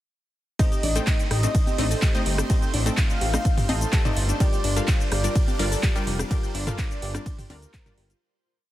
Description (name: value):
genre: progressive house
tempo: 126 BPM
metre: 4/4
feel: straight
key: G minor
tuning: A4 = 439 Hz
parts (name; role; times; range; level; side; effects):
- warm velvety synth lead; melody; 0.6-8.1 s; Bb4 to A5; -33 LUFS; equal; chorus, tremolo, sidechain pumping, tape echo
- supersaw pad; sustained chords; 1.2-8.2 s; G3 to F5; -36 LUFS; right 2 dB; sidechain pumping
- glassy wavetable pluck; arpeggios; 0.6-8.2 s; D4 to G6; -33 LUFS; equal; chorus, sidechain pumping, tape echo
- wide unison pluck; stabs; 0.6-7.9 s; G3 to G5; -32 LUFS; left 3 dB; sidechain pumping, tape echo
- electronic kick drum; drums; 0.6-7.8 s; none; -22 LUFS; equal; none
- house drum kit; drums; 0.6-8.2 s; handclaps, hi-hat, ride cymbal, shaker; -30 LUFS; right 1 dB; sidechain pumping on hats, sidechain pumping on cymbals, sidechain pumping on perc
- backwards swelling texture; texture; 1.9-8.2 s; C5 to C6; -42 LUFS; right 1 dB; none
- fat analog bass; bass; 0.8-8.1 s; F1 to D2; -25 LUFS; equal; sidechain pumping
- punchy analog drum machine; percussion; 1.3-8.0 s; congas, rim click, toms; -31 LUFS; equal; soft clipping on snare, sidechain pumping on snare, sidechain pumping on perc, sidechain pumping on toms
room: light reverb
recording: dense, heavily limited modern master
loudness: -21 LUFS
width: side -14 dB against mid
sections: 0.6-8.2 drop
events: drop 0.6-8.2; fade-out 5.7-8.2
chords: 0.6 Adim; 4.4 Gm7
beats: | 0.59 1.07 1.54 2.02 | 2.50 2.97 3.45 3.93 | 4.40 4.88 5.36 5.83 | 6.31 6.78 7.26 7.74